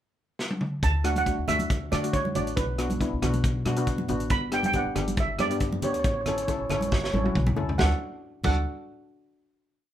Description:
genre	calypso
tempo	138 BPM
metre	4/4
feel	swing 53% on 16ths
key	D major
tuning	A4 = 440 Hz
part	tight funk drum kit	drums	0.4-8.6 s	crash cymbal, hi-hat, kick drum, rim click, snare drum, toms	-29 LUFS	equal	none
part	steel pan	melody	0.8-8.6 s	B4 to B5	-29 LUFS	right 4 dB	none
part	upright bass	bass	0.8-8.6 s	G1 to D3	-29 LUFS	equal	none
part	steel pan	accompaniment	1.0-8.6 s	A3 to A4	-31 LUFS	left 3 dB	none
part	congas	percussion	1.2-8.6 s	none	-32 LUFS	right 2 dB	none
room	moderate studio ambience, RT60 0.5 s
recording	minimal, uncompressed stereo recording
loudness	-24 LUFS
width	side -11 dB against mid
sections	0.0-0.8 pickup bar; 0.8-7.8 verse; 7.8-9.5 final chord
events	drum fill 0.4-0.8, 6.9-7.8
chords	0.0 N.C.; 0.8 D; 2.6 Bm; 4.3 G; 6.0 A; 7.8 D

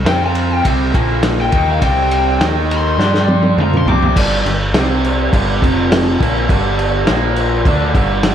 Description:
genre	classic rock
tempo	103 BPM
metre	4/4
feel	straight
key	unclear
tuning	A4 = 440 Hz
part	raw garage guitar	riff	0.0-8.3 s	F2 to G4	-17 LUFS	right 1 dB	overdrive, slapback echo
part	overdriven picked electric bass	bass	0.0-8.3 s	F1 to G2	-19 LUFS	equal	none
part	lead guitar through a small cranked amp	melody	0.1-4.2 s	F5 to D6	-20 LUFS	left 4 dB	overdrive, slapback echo
part	vintage drum kit	drums	0.1-8.3 s	crash cymbal, kick drum, ride cymbal, snare drum, toms	-16 LUFS	equal	none
room	light reverb, small room ambience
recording	none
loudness	-12 LUFS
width	side -9 dB against mid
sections	0.0-4.2 A section; 4.2-8.3 B section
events	lead electric guitar solo 0.0-4.2; drum fill 3.0-4.2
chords	0.1 F5; 0.7 C5; 1.0 Bb5; 1.5 C5; 2.4 Eb5; 3.0 G5; 3.6 C5; 4.2 G5; 4.7 C5; 5.3 G5; 5.6 F5; 6.2 G5; 7.1 Bb5; 7.7 G5

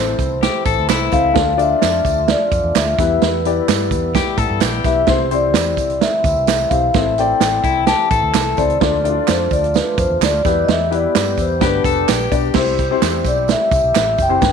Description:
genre	uptempo 1960s-style soul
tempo	129 BPM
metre	4/4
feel	straight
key	C major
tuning	A4 = 440 Hz
part	vibraphone with soft mallets	melody	0.0-14.5 s	B4 to A5	-18 LUFS	left 1 dB	slapback echo
part	warm baby grand piano	accompaniment	0.0-14.5 s	B3 to D5	-21 LUFS	left 13 dB	none
part	percussive tonewheel organ	sustained chords	0.0-14.5 s	E3 to G4	-27 LUFS	left 1 dB	slow rotary speaker
part	vintage muted fingered electric bass	bass	0.0-14.5 s	F1 to A2	-23 LUFS	equal	none
part	vintage drum kit	drums	0.2-14.5 s	crash cymbal, hi-hat, kick drum, snare drum	-19 LUFS	right 6 dB	none
part	tambourine and handclaps	percussion	0.2-14.5 s	none	-28 LUFS	right 13 dB	none
part	electric guitar at the edge of break-up	riff	0.4-1.3, 4.2-8.8, 11.6-12.5 s	E4 to A4	-22 LUFS	left 13 dB	none
room	light reverb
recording	1960s-style stereo with parts hard left and right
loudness	-14 LUFS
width	side -6 dB against mid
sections	0.0-12.6 A section; 12.6-14.5 B section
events	none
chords	0.0 Am; 1.4 Dm; 3.0 Em; 5.1 C; 6.9 Am; 8.8 Dm; 10.4 Em; 11.6 G; 12.6 C

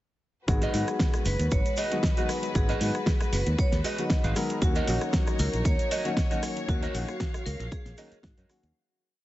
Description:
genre	nu-disco, nu disco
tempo	116 BPM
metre	4/4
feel	swing 54% on 16ths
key	G# dorian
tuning	A4 = 440 Hz
part	vibraphone with hard mallets	melody	0.5-8.6 s	F#4 to D#5	-35 LUFS	left 1 dB	digital delay
part	dark concert grand piano	accompaniment	0.5-8.7 s	D#3 to A#4	-33 LUFS	left 2 dB	sidechain pumping
part	warm studio string section	sustained chords	0.5-8.7 s	F#3 to E#5	-37 LUFS	left 2 dB	sidechain pumping
part	modern bright fingered electric bass	bass	0.5-8.7 s	F#1 to G#2	-28 LUFS	equal	none
part	electronic kick drum	drums	0.5-8.3 s	none	-27 LUFS	equal	studio reverb
part	pop drum kit	drums	0.5-8.7 s	hi-hat, rim click, snare drum	-33 LUFS	equal	studio reverb
part	tube shaker	percussion	0.5-8.7 s	none	-45 LUFS	right 2 dB	none
part	mellow electric guitar	riff	0.6-8.7 s	F#4 to E#5	-35 LUFS	right 3 dB	analog chorus
room	small room reverb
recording	heavily compressed radio sound, nothing above 7.9 kHz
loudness	-24 LUFS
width	side -15 dB against mid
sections	0.5-8.8 drop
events	drop 0.5-8.8; fade-out 6.0-8.8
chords	0.5 G#m7; 4.6 D#m7

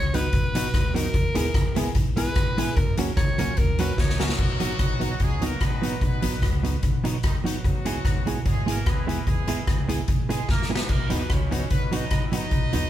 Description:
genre	ska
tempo	148 BPM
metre	4/4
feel	swing 53% on 8ths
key	B major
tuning	A4 = 440 Hz
part	bright alto saxophone	melody	0.0-4.2 s	A#4 to C#5	-29 LUFS	equal	none
part	upright bass	bass	0.0-12.9 s	G#1 to F#2	-29 LUFS	equal	none
part	hollow-body jazz guitar	accompaniment	0.1-12.8 s	F#3 to G#4	-30 LUFS	right 2 dB	analog delay
part	tack piano	stabs	0.1-4.3, 11.1-12.9 s	B3 to B4	-35 LUFS	left 3 dB	none
part	street-band drum kit	drums	0.1-12.8 s	crash cymbal, hi-hat, kick drum, rim click, snare drum	-24 LUFS	equal	none
part	warm horn section	melody	4.0-12.9 s	D#3 to E5	-32 LUFS	equal	analog delay
room	moderate stone room reverb, RT60 1.0 s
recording	band playing live in one room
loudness	-21 LUFS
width	side -12 dB against mid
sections	0.0-4.4 A section; 4.4-12.9 B section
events	alto saxophone solo 0.0-4.4; drum fill 4.0-4.4, 10.5-10.9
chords	0.0 B; 1.1 E; 2.8 F#; 4.4 B; 7.6 E; 10.9 B

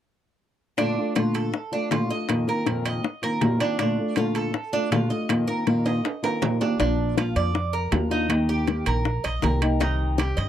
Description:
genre	latin, Cuban son and guajira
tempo	160 BPM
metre	4/4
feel	straight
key	Bb major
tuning	A4 = 440 Hz
part	nylon-string guitar	accompaniment	0.8-10.5 s	F2 to G4	-25 LUFS	left 1 dB	none
part	Cuban tres	arpeggios	0.8-10.5 s	D4 to Eb5	-28 LUFS	right 4 dB	none
part	bongos	percussion	0.8-10.4 s	none	-27 LUFS	left 7 dB	none
part	timbales	percussion	0.8-10.5 s	none	-30 LUFS	right 6 dB	none
part	upright bass	bass	6.8-10.5 s	Bb1 to G2	-25 LUFS	equal	none
room	light reverb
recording	dry, close 1970s-style studio recording, lossy compression artefacts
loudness	-22 LUFS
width	side -10 dB against mid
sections	0.8-6.8 A section; 6.8-10.5 B section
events	drum fill 5.9-6.8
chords	0.8 Bbmaj7; 2.3 F7sus4; 3.8 Bbmaj7; 5.3 F7sus4; 6.8 Bb; 8.3 Eb; 9.8 Cm

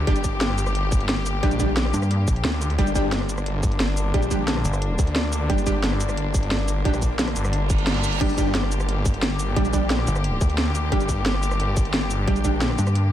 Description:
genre	dark technical drum and bass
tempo	177 BPM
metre	4/4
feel	straight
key	G minor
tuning	A4 = 441 Hz
part	clear studio string section	sustained chords	0.0-13.1 s	D3 to G4	-29 LUFS	left 2 dB	sidechain pumping
part	snarling distorted saw bass	bass	0.0-12.8 s	G1 to D2	-24 LUFS	equal	distortion, tube saturation
part	orchestra-hit-like synth stab	stabs	0.1-12.5 s	G3 to G4	-27 LUFS	right 2 dB	built-in reverb, cassette tape, ping-pong delay
part	drum and bass drum kit	drums	0.1-13.0 s	cabasa, crash cymbal, hi-hat, rim click, snare drum	-26 LUFS	equal	none
part	electronic kick drum	drums	0.1-12.5 s	none	-22 LUFS	equal	none
part	pulsing pluck wobble bass	bass	1.9-2.4, 4.6-5.0, 10.1-10.4, 12.8-13.1 s	G1 to G2	-21 LUFS	equal	chorus, tube saturation
part	reverse cymbal	sound effects	7.7-8.2 s	none	-31 LUFS	right 6 dB	none
room	little or no reverb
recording	none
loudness	-20 LUFS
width	side -11 dB against mid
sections	0.0-13.1 A section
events	reverse cymbal 7.7-8.2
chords	0.0 Gm

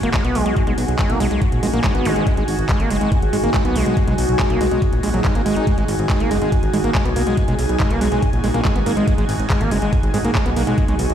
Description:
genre	psychedelic trance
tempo	141 BPM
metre	4/4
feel	straight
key	G# minor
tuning	A4 = 440 Hz
part	evolving wavetable pad	sustained chords	0.0-11.1 s	F#4	-25 LUFS	left 1 dB	chorus, built-in reverb, sidechain pumping
part	overdriven acid bass	riff	0.0-10.9 s	F#3 to D#4	-22 LUFS	equal	auto-pan, sidechain pumping, ping-pong delay
part	fat analog bass	bass	0.0-11.1 s	F#1 to B1	-21 LUFS	equal	none
part	garage drum kit	drums	0.0-11.1 s	handclaps, hi-hat	-28 LUFS	equal	none
part	airy breathy pad	texture	0.0-11.1 s	D#4 to G#5	-26 LUFS	right 3 dB	chorus, phaser, sidechain pumping
part	electronic kick drum	drums	0.1-10.9 s	none	-19 LUFS	equal	none
part	zap	sound effects	2.1-2.2 s	none	-29 LUFS	equal	none
room	light reverb, digital ambience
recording	played on a big sound system in a bare room, stone room reverb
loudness	-16 LUFS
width	side -9 dB against mid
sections	0.0-11.1 A section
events	none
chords	0.0 G#5

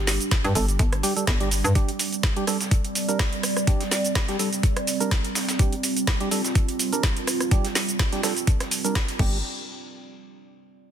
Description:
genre	bass house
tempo	125 BPM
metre	4/4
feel	swing 55% on 16ths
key	unclear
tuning	A4 = 440 Hz
part	dark analog pad	sustained chords	0.0-9.4 s	G3 to D5	-29 LUFS	right 3 dB	chorus, phaser, sidechain pumping
part	hollow knocking FM bass	bass	0.0-1.7, 9.2-9.4 s	G1 to G2	-24 LUFS	equal	tube saturation, sidechain pumping
part	dusty soul sampler-style drum kit	drums	0.1-9.2 s	hi-hat, snare drum	-35 LUFS	left 1 dB	overdrive, sidechain pumping on hats, high-pass filter on hats, high-pass filter on snare, high-pass filter on room
part	garage drum kit	drums	0.1-9.3 s	crash cymbal, hi-hat, rim click, shaker, snare drum	-27 LUFS	right 1 dB	overdrive
part	electronic kick drum	drums	0.3-9.3 s	none	-22 LUFS	equal	overdrive
part	percussive organ stab	stabs	0.4-9.4 s	G3 to Bb4	-30 LUFS	right 2 dB	chorus, sidechain pumping, dub echo
room	digital ambience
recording	dense, heavily limited modern master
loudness	-21 LUFS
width	side -9 dB against mid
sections	0.0-9.4 A section; 9.4-10.9 B section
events	none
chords	0.0 G5; 9.4 N.C.

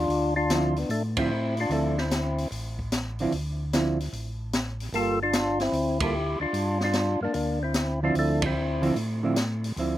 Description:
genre	soul jazz organ trio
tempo	149 BPM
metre	4/4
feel	swing 67% on 8ths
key	D minor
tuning	A4 = 442 Hz
part	percussive tonewheel organ	melody	0.0-2.5, 5.0-8.9 s	A3 to A4	-27 LUFS	left 2 dB	overdrive, slow rotary speaker, slapback echo
part	mellow tonewheel organ	bass	0.0-10.0 s	G1 to A2	-30 LUFS	equal	slow rotary speaker
part	open jazz drum kit	drums	0.1-9.9 s	hi-hat, kick drum, ride cymbal, snare drum	-32 LUFS	equal	none
part	hollow-body jazz guitar	accompaniment	0.5-10.0 s	D3 to A4	-28 LUFS	right 3 dB	none
room	little or no reverb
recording	recorded outdoors, with no room sound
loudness	-24 LUFS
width	side -13 dB against mid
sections	0.0-10.0 A section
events	band accent 1.1, 5.9, 8.4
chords	0.0 Dm9; 4.9 Gm7; 8.2 Dm9

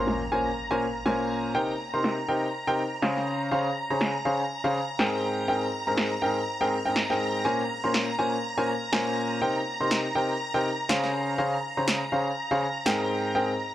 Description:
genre	piano house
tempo	122 BPM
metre	4/4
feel	swing 58% on 16ths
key	unclear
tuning	A4 = 441 Hz
part	string machine, violins	sustained chords	0.0-13.7 s	Bb5	-32 LUFS	equal	ensemble chorus
part	warm grand piano	riff	0.0-13.5 s	Ab2 to C6	-26 LUFS	equal	analog delay
part	impact	sound effects	0.0-1.5 s	none	-40 LUFS	equal	none
part	electronic snare drum	drums	0.1-13.0 s	none	-27 LUFS	equal	overdrive, low-pass filter on hats, low-pass filter on perc, low-pass filter on snare
room	light reverb, digital ambience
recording	dry, gritty hardware recording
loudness	-24 LUFS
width	side -13 dB against mid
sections	0.0-13.7 A section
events	impact 0.0-1.5; filter sweep on drum 0.0-13.7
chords	0.0 Bbm9; 1.5 Cm7; 3.3 Dbmaj7; 5.2 Abmaj9; 7.4 Bbm9; 9.4 Cm7; 11.1 Dbmaj7; 13.1 Abmaj9

